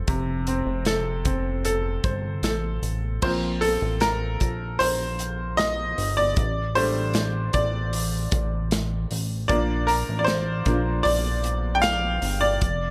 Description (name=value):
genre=pop ballad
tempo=77 BPM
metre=4/4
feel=straight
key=Bb major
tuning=A4 = 441 Hz
part: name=bright upright piano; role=accompaniment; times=0.0-12.9 s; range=C3 to G5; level=-27 LUFS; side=equal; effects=none
part: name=chorused synth bass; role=bass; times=0.0-12.9 s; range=F1 to Bb1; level=-29 LUFS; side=equal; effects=none
part: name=natural country drum kit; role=drums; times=0.1-12.8 s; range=crash cymbal, hi-hat, kick drum, snare drum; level=-30 LUFS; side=equal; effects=none
room=light reverb, small room ambience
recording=none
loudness=-24 LUFS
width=mono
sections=0.0-3.2 A section; 3.2-12.9 B section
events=upright piano solo 3.2-12.9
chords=0.0 F; 3.2 Bbsus2; 6.4 A7sus4; 9.5 Bb